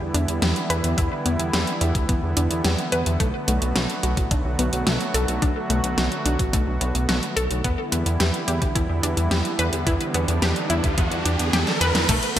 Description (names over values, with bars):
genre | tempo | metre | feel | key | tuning
synthwave | 108 BPM | 4/4 | straight | unclear | A4 = 442 Hz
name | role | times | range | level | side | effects
warm analog pad | sustained chords | 0.0-12.4 s | D3 to F#4 | -27 LUFS | right 1 dB | chorus, sidechain pumping
wide unison pluck | arpeggios | 0.0-12.4 s | A3 to B4 | -28 LUFS | left 2 dB | digital delay
chorused synth bass | bass | 0.0-12.4 s | A1 to E2 | -24 LUFS | equal | sidechain pumping
pop drum kit | drums | 0.1-12.4 s | cabasa, crash cymbal, hi-hat, snare drum | -25 LUFS | equal | overdrive, gated reverb
electronic kick drum | drums | 1.0-12.2 s | none | -24 LUFS | equal | overdrive
riser | sound effects | 9.7-12.1 s | none | -28 LUFS | right 2 dB | none
room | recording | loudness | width
moderate plate reverb, RT60 2.3 s | bright 1980s-style digital production | -20 LUFS | side -11 dB against mid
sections
0.0-12.1 A section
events
filter sweep on synth arpeggio sound 0.0-12.1; riser 9.7-12.1; drum fill 11.7-12.1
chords
0.0 Em7; 3.2 Bm7; 7.6 Em7